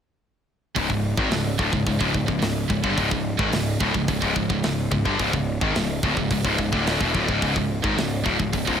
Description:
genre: heavy metal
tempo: 108 BPM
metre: 4/4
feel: straight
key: unclear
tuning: A4 = 440 Hz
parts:
  - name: high-gain distorted guitar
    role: riff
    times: 0.8-8.8 s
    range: C#2 to D#3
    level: -26 LUFS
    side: left 10 dB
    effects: distortion
  - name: scooped high-gain guitar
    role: riff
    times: 0.8-8.8 s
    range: C#2 to D#3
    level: -25 LUFS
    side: right 8 dB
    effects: distortion
  - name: fuzz picked electric bass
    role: bass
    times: 0.8-8.8 s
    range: C#1 to G#1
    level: -28 LUFS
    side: equal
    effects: overdrive
  - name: tight metal drum kit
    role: drums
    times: 0.8-8.8 s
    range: hi-hat, kick drum, snare drum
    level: -27 LUFS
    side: equal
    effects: none
room: small room ambience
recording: none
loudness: -20 LUFS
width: side -8 dB against mid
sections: 0.8-8.8 A section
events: none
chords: 0.8 C#5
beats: | 0.77 1.32 1.87 2.42 | 2.98 3.53 4.09 4.64 | 5.20 5.75 6.31 6.86 | 7.42 7.97 8.53

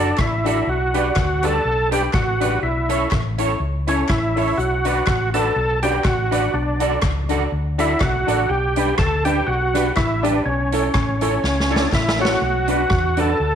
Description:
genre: ska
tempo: 123 BPM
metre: 4/4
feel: swing 56% on 8ths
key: B minor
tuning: A4 = 441 Hz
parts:
  - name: overdriven tonewheel organ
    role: melody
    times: 0.0-13.6 s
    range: C#4 to A4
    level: -21 LUFS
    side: right 1 dB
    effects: chorus vibrato, slapback echo
  - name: electric guitar at the edge of break-up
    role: accompaniment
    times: 0.0-13.3 s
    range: D4 to D5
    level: -26 LUFS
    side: right 9 dB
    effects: ensemble chorus, slapback echo
  - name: warm upright piano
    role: stabs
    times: 0.0-13.3 s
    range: C#4 to D5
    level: -27 LUFS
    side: left 9 dB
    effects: none
  - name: hollow-body short-scale fingered electric bass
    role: bass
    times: 0.0-13.6 s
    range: F#1 to E2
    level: -24 LUFS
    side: equal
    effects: none
  - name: street-band drum kit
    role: drums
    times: 0.2-13.3 s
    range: hi-hat, kick drum, rim click, snare drum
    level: -24 LUFS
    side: equal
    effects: slapback echo
  - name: group handclap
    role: percussion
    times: 0.2-12.1 s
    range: none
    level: -35 LUFS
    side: left 10 dB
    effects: none
room: moderate echo chamber reverb, RT60 1.3 s, studio reverb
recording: 1960s-style stereo with parts hard left and right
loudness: -17 LUFS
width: side -8 dB against mid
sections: 0.0-12.4 A section; 12.4-13.6 A section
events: drum fill 11.4-12.4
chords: 0.0 D; 0.7 G/B; 2.6 A; 4.6 Bm; 6.5 D/B; 8.5 G/B; 10.5 A; 12.4 Bm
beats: 0.18 | 0.67 1.16 1.65 2.14 | 2.63 3.12 3.61 4.09 | 4.58 5.07 5.56 6.05 | 6.54 7.03 7.52 8.01 | 8.50 8.99 9.48 9.97 | 10.46 10.95 11.44 11.93 | 12.42 12.91 13.40

